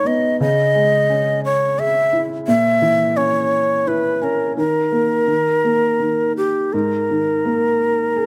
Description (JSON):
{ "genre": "children's music, lullaby", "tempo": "85 BPM", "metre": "3/4", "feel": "rubato", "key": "G# minor", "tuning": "A4 = 440 Hz", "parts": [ { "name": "mellow shakuhachi", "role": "melody", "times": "0.0-8.3 s", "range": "G4 to E5", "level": "-19 LUFS", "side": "equal", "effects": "none" }, { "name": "felt-muted upright piano", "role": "accompaniment", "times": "0.0-8.3 s", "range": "G#2 to G#4", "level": "-23 LUFS", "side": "equal", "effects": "none" } ], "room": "light reverb", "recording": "close, detailed microphones", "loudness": "-18 LUFS", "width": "mono", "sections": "0.0-8.3 A section", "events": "none", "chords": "0.4 C#madd9; 2.5 A#dim; 4.6 D#5; 6.7 G#sus2", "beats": "| 0.40 1.10 1.79 | 2.47 3.17 3.87 | 4.58 5.28 6.00 | 6.73 7.46 8.17" }